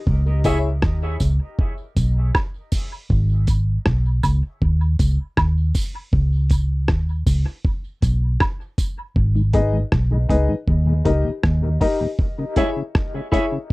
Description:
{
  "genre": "dub reggae",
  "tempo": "79 BPM",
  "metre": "4/4",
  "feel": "straight",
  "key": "G# harmonic minor",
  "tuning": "A4 = 440 Hz",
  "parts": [
    { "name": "vintage muted fingered electric bass", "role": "bass", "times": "0.1-11.8 s", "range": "G#1 to D#2", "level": "-18 LUFS", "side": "equal", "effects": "none" },
    { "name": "dusty soul sampler-style drum kit", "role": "drums", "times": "0.1-13.7 s", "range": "hi-hat, kick drum, rim click", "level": "-21 LUFS", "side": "equal", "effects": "none" },
    { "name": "warm upright piano", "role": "stabs", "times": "0.4-0.7, 9.5-13.5 s", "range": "D#4 to E5", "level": "-24 LUFS", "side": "left 3 dB", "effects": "dub echo" },
    { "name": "tambourine and woodblock", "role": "percussion", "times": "0.4-9.0 s", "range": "none", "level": "-28 LUFS", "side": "right 2 dB", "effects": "dub echo" },
    { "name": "clean electric guitar", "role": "accompaniment", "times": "0.5-0.6, 12.6-13.4 s", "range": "E4 to E5", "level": "-29 LUFS", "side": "right 4 dB", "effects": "wide subtle chorus, dub echo" },
    { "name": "mellow tonewheel organ", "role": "accompaniment", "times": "9.4-13.6 s", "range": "D#2 to E4", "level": "-26 LUFS", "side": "left 2 dB", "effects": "chorus vibrato, slow rotary speaker, dub echo" }
  ],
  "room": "little or no reverb",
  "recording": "dry, close 1970s-style studio recording",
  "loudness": "-18 LUFS",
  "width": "side -22 dB against mid",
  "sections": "0.0-13.7 A section",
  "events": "break 0.1-12.2, 12.2-13.7; part muted 9.2-13.7",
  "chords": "0.1 C#m; 3.1 G#m; 4.6 N.C.; 6.1 Badd9; 9.2 G#m; 10.7 D#; 12.2 C#m"
}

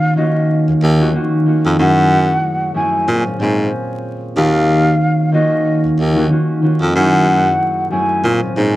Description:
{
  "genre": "hip hop, boom-bap hip-hop",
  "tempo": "93 BPM",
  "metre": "4/4",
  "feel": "swing 58% on 16ths",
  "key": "Eb minor",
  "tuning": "A4 = 441 Hz",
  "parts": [
    { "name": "breathy mellow concert flute", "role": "melody", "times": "0.0-8.4 s", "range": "Eb5 to Ab5", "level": "-18 LUFS", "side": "equal", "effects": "high-pass filter, low-pass filter, plate reverb" },
    { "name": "concert harp", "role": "accompaniment", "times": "0.0-8.8 s", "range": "Gb2 to Ab4", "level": "-15 LUFS", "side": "equal", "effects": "cassette tape, high-pass filter, low-pass filter" },
    { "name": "clear baritone saxophone", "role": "bass", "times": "0.7-8.8 s", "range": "Eb2 to Bb2", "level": "-15 LUFS", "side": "equal", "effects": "none" }
  ],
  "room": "moderate studio reverb, RT60 0.6 s",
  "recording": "dark, warm production, vinyl crackle",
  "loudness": "-12 LUFS",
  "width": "side -16 dB against mid",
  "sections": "0.0-8.8 A section",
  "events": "none",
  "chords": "0.0 Ebm9; 1.8 Gbm9; 3.1 Bbm9; 4.4 Ebm9; 7.0 Gbm9; 8.2 Bbm9"
}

